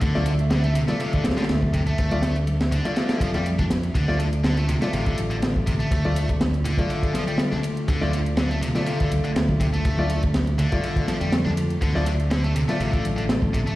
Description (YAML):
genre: breakbeat, breaks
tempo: 122 BPM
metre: 4/4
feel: straight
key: D minor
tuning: A4 = 440 Hz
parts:
  - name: phased analog pad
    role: sustained chords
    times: 0.0-13.8 s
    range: D3 to E5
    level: -31 LUFS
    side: equal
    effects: phaser, chorus, sidechain pumping
  - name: high-gain distorted guitar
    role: riff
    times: 0.0-13.8 s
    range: C3 to D4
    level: -29 LUFS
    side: equal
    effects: distortion, tube saturation, low-pass filter, tape echo
  - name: clear concert grand piano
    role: stabs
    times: 0.0-13.8 s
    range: A3 to D5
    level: -30 LUFS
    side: left 2 dB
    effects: tape echo
  - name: modern bright fingered electric bass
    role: bass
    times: 0.0-13.7 s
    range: A1 to F2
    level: -24 LUFS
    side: equal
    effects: none
  - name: crunchy breakbeat drum kit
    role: drums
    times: 0.0-13.7 s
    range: kick drum, ride cymbal, snare drum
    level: -25 LUFS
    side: equal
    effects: none
  - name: electronic hi-hat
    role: drums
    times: 0.0-13.8 s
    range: none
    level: -43 LUFS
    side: left 2 dB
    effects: none
  - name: congas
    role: percussion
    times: 0.2-13.5 s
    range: none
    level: -32 LUFS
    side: left 1 dB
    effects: none
room: light reverb, small room reverb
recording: played on a big sound system in a bare room, stone room reverb, vinyl crackle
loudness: -20 LUFS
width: side -17 dB against mid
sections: 0.0-13.8 A section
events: none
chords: 0.0 Dm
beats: | 0.02 0.51 1.00 1.49 | 1.98 2.48 2.97 3.46 | 3.95 4.44 4.93 5.43 | 5.92 6.41 6.90 7.39 | 7.88 8.38 8.87 9.36 | 9.85 10.34 10.84 11.33 | 11.82 12.31 12.80 13.29